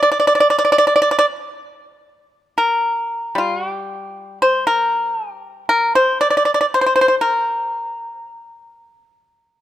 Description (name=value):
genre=chinese traditional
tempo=54-60 BPM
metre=4/4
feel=rubato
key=unclear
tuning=A4 = 440 Hz
part: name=pipa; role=solo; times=0.0-9.6 s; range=G3 to D5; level=-15 LUFS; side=equal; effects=none
room=light reverb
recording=close, detailed microphones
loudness=-14 LUFS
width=side -12 dB against mid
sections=0.0-2.6 A section; 2.6-9.6 B section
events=none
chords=none